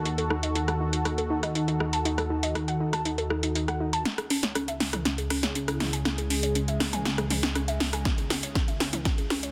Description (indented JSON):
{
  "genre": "melodic techno",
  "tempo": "120 BPM",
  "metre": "4/4",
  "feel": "straight",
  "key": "C# minor",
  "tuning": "A4 = 440 Hz",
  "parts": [
    { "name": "sweeping resonant pad", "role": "sustained chords", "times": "0.0-9.5 s", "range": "C#2 to A4", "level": "-32 LUFS", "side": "equal", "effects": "chorus, sidechain pumping" },
    { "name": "warbly dusty pluck", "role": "arpeggios", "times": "0.0-9.5 s", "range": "C#4 to A5", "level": "-34 LUFS", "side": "equal", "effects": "chorus, cassette tape, sidechain pumping, digital delay" },
    { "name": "deep house drum kit", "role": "drums", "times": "0.1-9.5 s", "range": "hi-hat, rim click, snare drum, toms", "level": "-32 LUFS", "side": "equal", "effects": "overdrive, high-pass filter on hats, low-pass filter on hats, high-pass filter on snare, low-pass filter on snare, high-pass filter on toms, low-pass filter on toms" },
    { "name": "bowed-like drone", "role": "drone", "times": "5.2-9.5 s", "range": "C#3 to G#3", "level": "-40 LUFS", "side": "equal", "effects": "built-in reverb, sidechain pumping" },
    { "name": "electronic kick drum", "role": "drums", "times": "8.1-9.2 s", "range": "none", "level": "-30 LUFS", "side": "equal", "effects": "overdrive" }
  ],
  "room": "light reverb",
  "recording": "dense, heavily limited modern master",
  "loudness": "-28 LUFS",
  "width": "mono",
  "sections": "0.0-4.1 A section; 4.1-9.5 B section",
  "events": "filter sweep on synth arpeggio sound 0.0-4.1; build-up 4.1-9.5; drum fill 4.1-9.5",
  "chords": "0.0 D#dim; 4.1 C#m",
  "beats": "| 0.05 0.55 1.05 1.55 | 2.05 2.55 3.05 3.55 | 4.05 4.55 5.05 5.55 | 6.05 6.55 7.05 7.55 | 8.05 8.55 9.05"
}